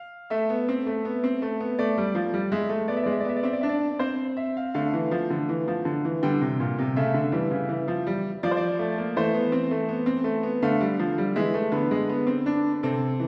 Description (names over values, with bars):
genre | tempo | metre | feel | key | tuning
classical, baroque-style 3-part fugue for grand piano | 81 BPM | 3/4 | straight | D minor | A4 = 441 Hz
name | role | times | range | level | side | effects
bright baby grand piano | solo | 0.0-13.3 s | Bb2 to G5 | -26 LUFS | equal | none
room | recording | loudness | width
wet recital hall reverb, RT60 1.6 s | heard from further back in the room | -26 LUFS | mono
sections
0.0-4.7 A section; 4.7-13.3 B section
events
none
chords
0.3 Am; 1.8 Dm; 2.5 E7/G#; 4.0 Cadd11; 4.7 Dm; 6.2 Gm; 7.0 A7/C#; 8.4 Dm/F; 9.2 Am/E; 10.6 Dm; 11.4 E7